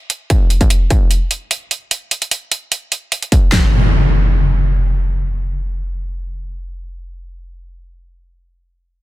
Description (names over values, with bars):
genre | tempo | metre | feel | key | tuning
heavy wobble dubstep | 149 BPM | 4/4 | half-time | none | none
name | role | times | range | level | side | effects
electronic hi-hat | drums | 0.1-3.4 s | none | -18 LUFS | right 3 dB | none
dubstep drum kit | drums | 0.3-3.6 s | handclaps, kick drum, snare drum | -12 LUFS | equal | distortion
impact | sound effects | 3.5-7.7 s | none | -16 LUFS | equal | none
room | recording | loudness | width
digital ambience | dense, heavily limited modern master | -14 LUFS | side -16 dB against mid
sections
0.0-3.5 A section; 3.5-6.7 B section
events
none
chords
none